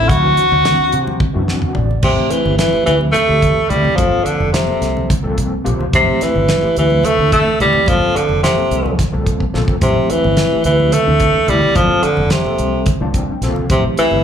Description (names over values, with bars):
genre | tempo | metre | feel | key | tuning
electric jazz fusion | 216 BPM (eighths) | 7/8 | straight | G dorian | A4 = 441 Hz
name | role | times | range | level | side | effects
clear tenor saxophone | melody | 0.0-14.2 s | C3 to F#4 | -14 LUFS | equal | slapback echo, plate reverb
overdriven tine electric piano | accompaniment | 0.0-14.2 s | E3 to G5 | -22 LUFS | left 2 dB | fast tremolo, analog chorus, plate reverb, slapback echo
fretless electric bass | bass | 0.0-14.2 s | F1 to C3 | -19 LUFS | equal | none
damped 70s drum kit | drums | 0.1-14.1 s | crash cymbal, hi-hat, kick drum, snare drum, toms | -18 LUFS | equal | none
congas | percussion | 0.1-14.2 s | none | -25 LUFS | right 2 dB | none
room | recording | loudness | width
light reverb | live gig heard through the venue's PA, club reverb | -12 LUFS | side -8 dB against mid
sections
0.0-2.0 A section; 2.0-14.2 B section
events
drum fill 1.2-2.0, 9.4-9.8; tine electric piano fill 1.2-2.0, 12.9-13.7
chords
0.1 D9; 2.0 Am7; 4.0 Gm11; 5.9 Am7; 7.9 Gm11; 9.8 Am7; 11.8 Gm11; 13.7 Am7